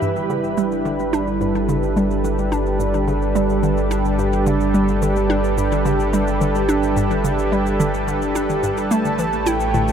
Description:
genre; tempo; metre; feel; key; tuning
ambient, sequencer-driven space music; 108 BPM; 4/4; straight; G lydian; A4 = 440 Hz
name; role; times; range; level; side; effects
lush unison pad; sustained chords; 0.0-9.9 s; G3 to B5; -20 LUFS; right 1 dB; chorus
hollow square pluck; riff; 0.0-9.9 s; G2 to E4; -23 LUFS; equal; chorus, ping-pong delay
warm sub bass; bass; 0.0-9.9 s; G1 to A1; -24 LUFS; equal; none
electronic cabasa and toms; percussion; 0.0-9.9 s; none; -33 LUFS; left 5 dB; none
bubbling stepped-filter texture; texture; 0.0-9.9 s; E4 to E5; -37 LUFS; right 1 dB; none
breathy flute-like synth lead; melody; 8.9-9.9 s; G5 to A5; -23 LUFS; equal; analog chorus
room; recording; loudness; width
wet huge ambient reverb, RT60 9.2 s; none; -17 LUFS; side -8 dB against mid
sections
0.0-9.9 A section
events
fade-in on drum 0.0-9.9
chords
0.0 Gadd9; 8.9 Aadd9

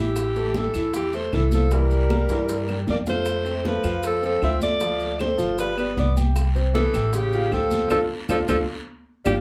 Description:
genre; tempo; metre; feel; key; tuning
Afro-Cuban jazz; 155 BPM; 4/4; straight; C major; A4 = 440 Hz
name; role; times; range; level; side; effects
clear alto saxophone; melody; 0.0-9.4 s; G4 to E5; -28 LUFS; equal; slapback echo
clear tenor saxophone; second line; 0.0-9.3 s; C#3 to C4; -32 LUFS; equal; none
clear baby grand piano; accompaniment; 0.0-9.4 s; E3 to G5; -31 LUFS; equal; none
upright bass; bass; 0.0-9.4 s; G1 to G2; -27 LUFS; equal; none
bongos; percussion; 0.2-9.4 s; none; -38 LUFS; equal; none
claves; percussion; 0.2-9.3 s; none; -43 LUFS; equal; none
congas; percussion; 0.2-9.3 s; none; -34 LUFS; equal; none
guiro; percussion; 0.2-9.4 s; none; -44 LUFS; equal; none
maracas; percussion; 0.2-9.3 s; none; -46 LUFS; equal; none
room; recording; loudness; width
wet club reverb, RT60 0.6 s; heard from further back in the room; -23 LUFS; mono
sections
0.0-9.4 A section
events
drum fill 2.3-3.3, 8.3-9.4; band accent 7.9-9.4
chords
0.2 Am7; 1.7 C7; 3.3 F; 4.8 Dm7; 5.6 G7; 6.4 Cmaj7; 7.1 Aaug7; 7.9 Dm; 8.7 G5

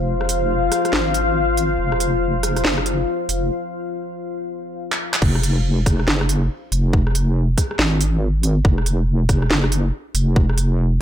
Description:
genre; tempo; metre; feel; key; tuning
deep dubstep; 140 BPM; 4/4; swing 62% on 16ths, half-time; F phrygian; A4 = 439 Hz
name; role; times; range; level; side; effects
deep dark ambient pad; sustained chords; 0.0-5.2 s; F4 to F5; -22 LUFS; left 4 dB; chorus, built-in reverb
deep soft wobble bass; bass; 0.0-11.0 s; F1 to Ab1; -19 LUFS; equal; chorus
garage drum kit; drums; 0.2-10.7 s; crash cymbal, handclaps, hi-hat, rim click, snare drum; -22 LUFS; right 1 dB; none
electronic kick drum; drums; 5.2-10.5 s; none; -18 LUFS; equal; none
room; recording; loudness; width
little or no reverb; faint mains hum; -17 LUFS; side -10 dB against mid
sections
0.0-5.2 A section; 5.2-11.0 B section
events
build-up 0.0-5.2; break 3.5-5.2; drum fill 4.9-5.2; drop 5.2-11.0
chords
0.0 Fm

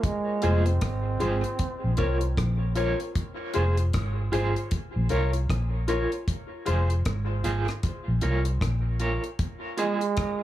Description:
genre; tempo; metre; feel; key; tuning
dub reggae; 77 BPM; 4/4; swing 59% on 16ths; F minor; A4 = 436 Hz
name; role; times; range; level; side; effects
clear trombone; melody; 0.0-2.8, 9.8-10.4 s; Ab3 to C4; -30 LUFS; right 4 dB; dub echo
deep reggae drum kit; drums; 0.0-10.4 s; hi-hat, kick drum, rim click; -30 LUFS; equal; none
electric guitar at the edge of break-up; accompaniment; 0.4-10.0 s; F4 to Db5; -32 LUFS; right 4 dB; tremolo, dub echo
dark grand piano; stabs; 0.4-6.9 s; F4 to Db5; -32 LUFS; left 4 dB; dub echo
vintage muted fingered electric bass; bass; 0.4-9.2 s; F1 to C2; -25 LUFS; equal; none
room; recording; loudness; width
light reverb, studio reverb; small room ambience; -24 LUFS; side -13 dB against mid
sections
0.0-10.4 A section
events
none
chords
0.0 Fm; 1.6 Bbm; 3.2 Fm; 4.7 Bbm; 6.3 Fm; 7.8 Bbm; 9.4 Fm

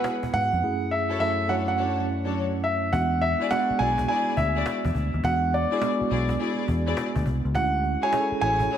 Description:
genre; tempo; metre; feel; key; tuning
R&B, new jack swing; 104 BPM; 4/4; swing 65% on 16ths; unclear; A4 = 440 Hz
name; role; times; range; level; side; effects
warm concert grand piano; melody; 0.0-8.8 s; D5 to G#5; -26 LUFS; right 1 dB; slapback echo
mellow tine electric piano; accompaniment; 0.0-8.8 s; F#2 to A4; -28 LUFS; right 2 dB; medium stereo tremolo, slapback echo
warm studio string section; stabs; 0.0-8.8 s; F#3 to D5; -32 LUFS; left 6 dB; slapback echo, ping-pong delay
cajon; drums; 0.0-8.8 s; none; -35 LUFS; left 1 dB; none
vintage muted fingered electric bass; bass; 0.3-8.7 s; A1 to G#2; -27 LUFS; equal; none
room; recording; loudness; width
moderate recital hall reverb, RT60 1.4 s, studio reverb; big arena sound; -22 LUFS; side -9 dB against mid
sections
0.0-2.9 A section; 2.9-8.8 B section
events
none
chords
0.0 Eadd9; 0.6 F#m7; 1.5 Dmaj7/F#; 2.9 E9; 7.5 Dmaj9#11

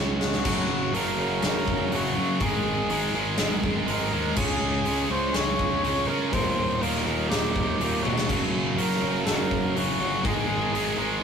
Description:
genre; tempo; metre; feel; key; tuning
hard rock; 122 BPM; 4/4; straight; unclear; A4 = 439 Hz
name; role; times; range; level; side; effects
high-gain distorted guitar; riff; 0.0-11.2 s; Eb2 to Db4; -33 LUFS; left 6 dB; distortion
tight distorted guitar; riff; 0.0-11.2 s; Eb2 to Db4; -29 LUFS; right 5 dB; distortion
fuzz fingered electric bass; bass; 0.0-11.2 s; Eb1 to Db3; -33 LUFS; left 1 dB; overdrive
mellow cor anglais; melody; 0.2-11.2 s; Gb4 to Db5; -30 LUFS; left 1 dB; none
big rock drum kit; drums; 0.2-10.9 s; crash cymbal, hi-hat, kick drum, snare drum, toms; -28 LUFS; equal; none
scooped high-gain guitar; riff; 0.5-11.2 s; Eb2 to Db4; -30 LUFS; left 1 dB; distortion
room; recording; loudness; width
moderate small room reverb, RT60 0.5 s; rough rehearsal-room recording, warm saturation; -22 LUFS; side -7 dB against mid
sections
0.4-11.2 A section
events
drum fill 0.0-0.4, 8.0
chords
0.4 Gb; 2.4 Ab5; 4.4 Db5; 6.3 Eb; 8.3 Gb; 10.2 Ab5

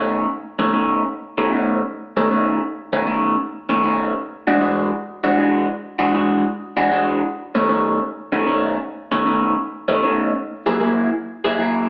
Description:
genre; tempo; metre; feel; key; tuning
blues; 155 BPM; 4/4; swing 64% on 8ths; B mixolydian; A4 = 440 Hz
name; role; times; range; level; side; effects
electric guitar through a small old amp; solo; 0.0-11.9 s; B2 to G#4; -20 LUFS; equal; phaser
room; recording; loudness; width
wet large studio reverb, RT60 1.2 s; band playing live in one room; -20 LUFS; mono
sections
0.0-11.9 A section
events
none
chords
0.0 B9; 4.2 E9; 7.3 B9; 10.4 F#9

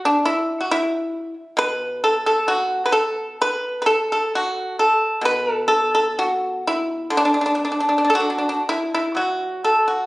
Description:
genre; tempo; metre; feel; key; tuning
chinese traditional, Chinese solo plucked strings; 57-69 BPM; 4/4; rubato; D gong mode; A4 = 440 Hz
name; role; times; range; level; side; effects
pipa; solo; 0.1-10.1 s; B2 to B4; -18 LUFS; equal; none
room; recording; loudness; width
moderate recital hall reverb, RT60 1.3 s; recorded on a phone in the room, studio reverb, compression; -18 LUFS; side -20 dB against mid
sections
0.0-9.2 A section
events
none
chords
none

